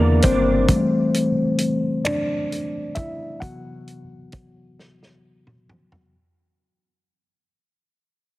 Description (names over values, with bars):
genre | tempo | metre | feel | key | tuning
slow six-eight R&B | 44 BPM (dotted quarters) | 6/8 | straight | unclear | A4 = 440 Hz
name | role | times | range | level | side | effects
electric guitar at the edge of break-up | second line | 0.0-1.3 s | C3 to E4 | -27 LUFS | right 5 dB | ensemble chorus
tine electric piano | accompaniment | 0.0-6.2 s | C3 to F#5 | -21 LUFS | left 2 dB | none
smooth synth bass | bass | 0.0-0.7 s | G1 to E2 | -19 LUFS | equal | none
warm soul drum kit | drums | 0.2-6.1 s | finger snaps, hi-hat, kick drum, snare drum, toms | -22 LUFS | equal | none
room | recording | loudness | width
light reverb, small room reverb | heavily compressed radio sound, multiband compression | -18 LUFS | side -17 dB against mid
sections
0.0-6.1 A section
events
fade-out 0.0-6.1; tine electric piano solo 0.0-6.1; drum fill 4.8-6.1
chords
0.0 C9; 0.7 C69/E; 3.4 Cmaj7#11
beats
| 0.69 2.05 | 3.42 4.78